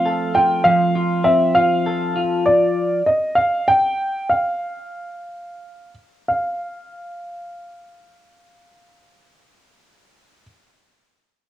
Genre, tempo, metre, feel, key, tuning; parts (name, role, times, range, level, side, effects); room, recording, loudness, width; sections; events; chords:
pop; 57-67 BPM (dotted quarters); 6/8; straight; F major; A4 = 439 Hz
warm baby grand piano; melody; 0.0-10.4 s; D5 to G5; -18 LUFS; equal
clean electric guitar; accompaniment; 0.0-3.0 s; F3 to A4; -20 LUFS; equal; lush chorus, cassette tape
small room ambience; home recording on cassette; -16 LUFS; side -12 dB against mid
0.0-6.3 A section; 6.3-10.4 B section
slowing down 2.4-6.3
0.0 F; 2.4 N.C.